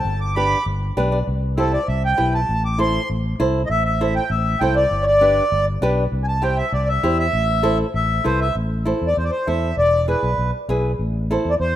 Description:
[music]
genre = latin, cumbia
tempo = 198 BPM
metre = 4/4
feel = straight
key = A minor, A harmonic minor from 8.6 s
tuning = A4 = 440 Hz
[part]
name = accordion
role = melody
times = 0.0-11.8 s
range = A4 to D6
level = -20 LUFS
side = equal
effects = none
[part]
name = fingered electric bass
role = bass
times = 0.1-11.7 s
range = E1 to E2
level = -22 LUFS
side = equal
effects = none
[part]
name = flamenco guitar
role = accompaniment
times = 0.4-11.5 s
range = D4 to D5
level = -24 LUFS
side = right 1 dB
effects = none
[sound]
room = light reverb, small room ambience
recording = rough home demo mix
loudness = -17 LUFS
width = side -12 dB against mid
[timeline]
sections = 0.0-8.6 A section; 8.6-11.8 B section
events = accordion solo 0.0-8.6; nylon-string guitar fill 0.8-1.3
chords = 0.1 G; 1.3 C; 2.5 Am; 4.9 G; 6.1 C; 7.3 Am; 9.8 E7; 11.0 Am

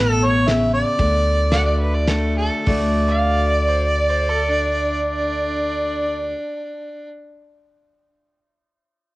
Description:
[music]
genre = honky-tonk and classic country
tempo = 98-122 BPM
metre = 3/4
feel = straight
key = D major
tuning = A4 = 440 Hz
[part]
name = mellow harmonica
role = melody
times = 0.0-6.3 s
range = B4 to E5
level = -20 LUFS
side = right 1 dB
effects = plate reverb
[part]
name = picked steel-string acoustic guitar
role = accompaniment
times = 0.0-6.4 s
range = A2 to F#4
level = -25 LUFS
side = left 2 dB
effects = cassette tape, plate reverb
[part]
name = upright bass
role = bass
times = 0.0-6.3 s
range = A1 to D2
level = -22 LUFS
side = equal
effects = none
[part]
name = damped 70s drum kit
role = drums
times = 0.5-2.8 s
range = hi-hat, kick drum, ride cymbal, snare drum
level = -24 LUFS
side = equal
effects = cassette tape
[part]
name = clear fiddle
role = second line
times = 1.5-7.1 s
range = D4 to F#5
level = -24 LUFS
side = right 1 dB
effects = cassette tape
[sound]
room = light reverb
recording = home recording on cassette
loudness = -17 LUFS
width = side -19 dB against mid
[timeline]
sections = 0.0-2.7 A section; 2.7-6.3 B section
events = slowing down 0.0-2.7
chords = 0.0 A; 1.0 D

